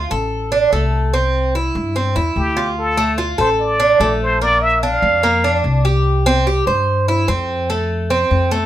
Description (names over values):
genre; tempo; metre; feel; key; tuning
latin, Cuban son and guajira; 146 BPM; 4/4; straight; unclear; A4 = 440 Hz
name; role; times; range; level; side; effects
Cuban tres; arpeggios; 0.0-8.7 s; A3 to C5; -17 LUFS; right 2 dB; none
upright bass; bass; 0.0-8.7 s; A1 to G2; -19 LUFS; left 1 dB; none
trumpet with plunger mute; melody; 2.4-5.6 s; G4 to F5; -17 LUFS; equal; none
room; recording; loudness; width
moderate studio reverb, RT60 0.6 s; minimal, uncompressed stereo recording; -14 LUFS; side -12 dB against mid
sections
0.0-8.7 A section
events
none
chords
0.0 D5; 1.1 C; 2.8 Dm; 4.4 Bbadd9; 6.1 C; 7.7 F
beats
0.32 0.73 | 1.14 1.55 1.96 2.37 | 2.78 3.19 3.60 4.00 | 4.42 4.83 5.24 5.64 | 6.06 6.47 6.88 7.29 | 7.70 8.11 8.52